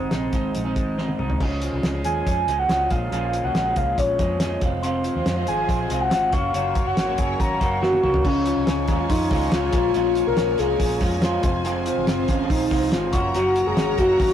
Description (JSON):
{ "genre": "jangly indie pop", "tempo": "141 BPM", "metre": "4/4", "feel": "straight", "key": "Db major", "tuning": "A4 = 444 Hz", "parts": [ { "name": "soft octave-layered synth lead", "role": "melody", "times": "0.0-14.3 s", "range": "C4 to Bb5", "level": "-23 LUFS", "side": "left 1 dB", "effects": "chorus, phaser" }, { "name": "electric guitar through a small old amp", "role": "accompaniment", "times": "0.0-14.3 s", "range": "F2 to Ab4", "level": "-29 LUFS", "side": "right 4 dB", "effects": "none" }, { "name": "electric guitar through a small old amp", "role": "arpeggios", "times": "0.0-14.3 s", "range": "F2 to Eb4", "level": "-29 LUFS", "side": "left 1 dB", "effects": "none" }, { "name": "vintage muted fingered electric bass", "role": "bass", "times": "0.0-14.3 s", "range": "F1 to F2", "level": "-28 LUFS", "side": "equal", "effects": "none" }, { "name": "cloth-damped thuddy drum kit", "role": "drums", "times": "0.1-14.3 s", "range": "crash cymbal, hi-hat, kick drum, snare drum, toms", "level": "-25 LUFS", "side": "equal", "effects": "none" }, { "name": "glockenspiel with rubber mallets", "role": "second line", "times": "4.8-14.3 s", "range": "Ab5 to Db6", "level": "-32 LUFS", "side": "left 2 dB", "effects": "none" }, { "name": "clear studio string section", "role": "sustained chords", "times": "4.8-14.3 s", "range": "F3 to Bb5", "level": "-34 LUFS", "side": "equal", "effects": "none" } ], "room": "light reverb", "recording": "rough rehearsal-room recording, warm saturation", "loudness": "-19 LUFS", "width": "side -10 dB against mid", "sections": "0.0-1.4 A section; 1.4-8.2 B section; 8.2-14.3 C section", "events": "drum fill 1.0-1.4, 7.8-8.2", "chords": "0.0 Ab; 1.4 Db; 2.9 Bbm7; 4.6 Fm; 6.3 Gb; 8.2 Db; 9.7 Bbm7; 11.4 Fm; 13.1 Gb", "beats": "0.12 0.55 0.98 | 1.41 1.84 2.27 2.69 | 3.12 3.55 3.98 4.41 | 4.83 5.26 5.69 6.12 | 6.54 6.97 7.39 7.82 | 8.25 8.67 9.10 9.52 | 9.95 10.37 10.80 11.22 | 11.65 12.07 12.50 12.92 | 13.35 13.77 14.20" }